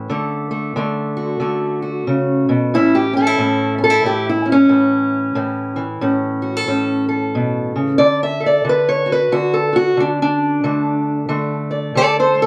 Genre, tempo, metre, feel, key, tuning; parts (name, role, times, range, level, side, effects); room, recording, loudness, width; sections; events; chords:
acoustic country blues, solo or duo; 91 BPM; 4/4; swing 61% on 8ths; A4 = 435 Hz
fingerpicked steel-string acoustic guitar; solo; 0.0-12.5 s; A2 to E5; -17 LUFS; equal
moderate studio ambience, RT60 0.5 s; -17 LUFS; mono
0.0-12.5 A section
steel-string acoustic guitar solo 0.0-12.5
0.1 D; 2.7 A; 8.0 D